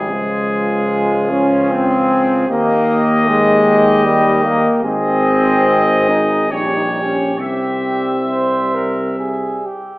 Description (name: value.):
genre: classical, hymn-like piece for brass band.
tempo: 65-77 BPM.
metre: 3/4.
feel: rubato.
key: unclear.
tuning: A4 = 440 Hz.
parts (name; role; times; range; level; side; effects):
clear trumpet section; melody; 0.0-9.7 s; Ab4 to E5; -20 LUFS; left 1 dB; none.
mellow trombone section; accompaniment; 0.0-9.6 s; G3 to Eb4; -16 LUFS; equal; none.
warm euphonium; accompaniment; 0.0-9.7 s; C3 to G3; -23 LUFS; equal; none.
mellow tuba; bass; 0.0-9.7 s; Ab1 to Eb2; -22 LUFS; equal; none.
mellow flugelhorn; second line; 0.1-10.0 s; F4 to C5; -21 LUFS; right 2 dB; none.
room: wet recital hall reverb, RT60 1.4 s.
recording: small speaker sound.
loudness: -13 LUFS.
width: side -21 dB against mid.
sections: 0.0-10.0 A section.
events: none.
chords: 0.1 Db; 2.5 Eb; 4.9 Ab; 6.5 Gdim/Bb; 7.4 C.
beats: | 0.10 0.90 1.70 | 2.50 3.28 4.06 | 4.86 5.68 6.51 | 7.39 8.31 9.21.